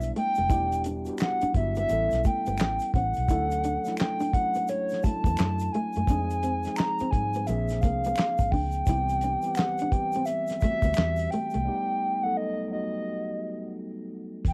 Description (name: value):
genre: R&B, neo-soul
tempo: 86 BPM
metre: 4/4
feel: swing 62% on 16ths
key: unclear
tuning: A4 = 440 Hz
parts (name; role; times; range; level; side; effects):
- hollow clarinet-like synth lead; melody; 0.0-14.5 s; C#5 to A#5; -30 LUFS; equal; chorus, cassette tape
- mellow tine electric piano; accompaniment; 0.0-14.5 s; E3 to D5; -36 LUFS; equal; subtle chorus, cassette tape
- vintage muted fingered electric bass; bass; 0.0-14.5 s; E1 to Ab2; -33 LUFS; equal; none
- cloth-damped thuddy drum kit; drums; 0.0-14.5 s; handclaps, hi-hat, kick drum, snare drum; -29 LUFS; equal; cassette tape
- egg shaker and finger snaps; percussion; 0.0-11.6 s; none; -49 LUFS; equal; none
- nylon-string guitar; second line; 0.2-11.6 s; A3 to E4; -36 LUFS; equal; cassette tape
room: light reverb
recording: home recording on cassette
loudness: -27 LUFS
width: mono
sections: 0.0-14.5 A section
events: break 11.7-14.5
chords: 0.5 Em9; 1.9 A9; 3.3 Dmaj7; 6.1 Fm7; 7.5 A#9; 8.9 Cmaj7; 11.7 B7b13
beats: | 0.50 1.20 1.89 2.59 | 3.29 3.99 4.68 5.38 | 6.08 6.78 7.47 8.17 | 8.87 9.57 10.27 10.96 | 11.66 12.36 13.06 13.75 | 14.45